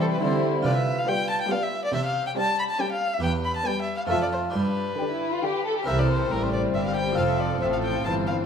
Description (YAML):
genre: classical, baroque-style concerto movement with solo episodes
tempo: 138 BPM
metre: 3/4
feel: straight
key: C major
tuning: A4 = 441 Hz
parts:
  - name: rich chamber violin section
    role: melody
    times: 0.0-8.5 s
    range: C4 to C5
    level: -36 LUFS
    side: left 4 dB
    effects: none
  - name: warm violin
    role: melody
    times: 0.0-8.4 s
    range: A4 to B5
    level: -28 LUFS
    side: left 2 dB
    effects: none
  - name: warm studio violin section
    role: second line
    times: 0.0-8.5 s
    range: A3 to A4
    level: -30 LUFS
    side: left 4 dB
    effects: none
  - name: harpsichord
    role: accompaniment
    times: 0.0-8.4 s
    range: E2 to C5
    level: -31 LUFS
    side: right 1 dB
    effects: none
  - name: warm chamber viola section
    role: accompaniment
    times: 0.0-8.5 s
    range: D3 to G3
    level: -31 LUFS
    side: equal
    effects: none
  - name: warm chamber cello section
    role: bass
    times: 0.0-8.5 s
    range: E2 to E3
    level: -29 LUFS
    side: right 2 dB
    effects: none
  - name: warm chamber double bass section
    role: bass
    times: 5.9-8.5 s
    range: F1 to C2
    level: -29 LUFS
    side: right 3 dB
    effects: none
room: moderate recital hall reverb, RT60 1.5 s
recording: minimal, uncompressed stereo recording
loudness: -22 LUFS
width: side -7 dB against mid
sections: 0.0-5.9 A section; 5.9-8.5 A section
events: none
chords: 0.0 C; 0.6 G7/C; 1.9 C5; 3.2 Em; 4.1 F; 4.5 G; 5.9 C7; 7.2 F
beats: 0.22 | 0.65 1.08 1.51 | 1.94 2.37 2.80 | 3.23 3.67 4.10 | 4.55 4.99 5.43 | 5.88 6.31 6.74 | 7.18 7.62 8.05